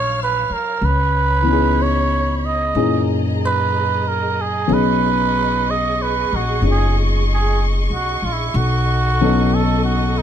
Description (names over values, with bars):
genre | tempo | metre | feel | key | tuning
jazz ballad | 62 BPM | 4/4 | swing 68% on 8ths | unclear | A4 = 440 Hz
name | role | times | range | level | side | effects
trumpet with cup mute | melody | 0.0-10.2 s | D#4 to D#5 | -20 LUFS | right 5 dB | none
warm grand piano | accompaniment | 0.0-10.2 s | A#2 to C#5 | -21 LUFS | left 4 dB | none
warm studio string section | sustained chords | 0.0-10.2 s | G#4 to E#6 | -26 LUFS | left 1 dB | none
upright bass | bass | 0.0-10.2 s | F#1 to F#2 | -20 LUFS | equal | none
room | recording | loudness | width
light reverb | close, detailed microphones | -15 LUFS | side -9 dB against mid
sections
0.0-10.2 A section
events
none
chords
0.0 D#m9; 0.8 C#m7; 2.7 F#13; 4.7 B69; 8.5 B9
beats
| 0.81 1.77 2.74 3.71 | 4.68 5.65 6.61 7.57 | 8.54 9.50